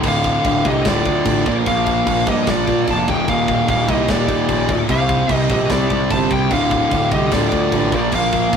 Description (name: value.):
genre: heavy metal.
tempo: 148 BPM.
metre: 4/4.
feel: straight.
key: D phrygian.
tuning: A4 = 441 Hz.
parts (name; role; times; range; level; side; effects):
fuzz guitar; riff; 0.0-8.6 s; D2 to C4; -21 LUFS; equal; distortion.
scooped high-gain guitar; riff; 0.0-8.6 s; D2 to C4; -29 LUFS; left 6 dB; distortion.
tight distorted guitar; riff; 0.0-8.6 s; D2 to C4; -23 LUFS; right 4 dB; distortion.
fuzz picked electric bass; bass; 0.0-8.6 s; D1 to Bb2; -22 LUFS; left 1 dB; overdrive.
tight metal drum kit; drums; 0.0-8.6 s; crash cymbal, kick drum, snare drum; -23 LUFS; equal; none.
high-gain lead guitar; melody; 0.1-8.6 s; D5 to A5; -20 LUFS; left 1 dB; distortion.
bluesy overdriven lead guitar; second line; 0.1-8.6 s; F4 to D5; -27 LUFS; right 2 dB; distortion.
room: moderate booth ambience, RT60 0.2 s.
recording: rough rehearsal-room recording.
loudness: -14 LUFS.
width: side -7 dB against mid.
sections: 0.0-8.6 A section.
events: half time 0.0-8.6.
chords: 0.0 Dm; 1.5 Bb; 3.1 Eb; 4.9 C5; 6.5 Dm; 7.9 Bb.